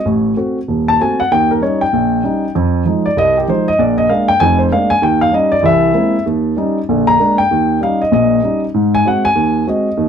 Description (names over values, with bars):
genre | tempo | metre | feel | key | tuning
jazz | 194 BPM | 4/4 | swing 61% on 8ths | Eb mixolydian | A4 = 442 Hz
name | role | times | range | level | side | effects
dark baby grand piano | solo | 0.0-10.1 s | Eb1 to Bb5 | -12 LUFS | equal | none
room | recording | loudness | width
light reverb | none | -12 LUFS | side -8 dB against mid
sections
0.0-7.5 A section; 7.5-10.1 A section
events
grand piano solo 0.0-10.1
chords
0.1 Adim7; 1.3 Eb7; 2.5 Fm7; 3.8 Bb7; 5.0 Eb7; 5.6 Caug7; 6.3 Eb7; 6.9 Bb7; 7.5 Eb7; 8.7 Ab7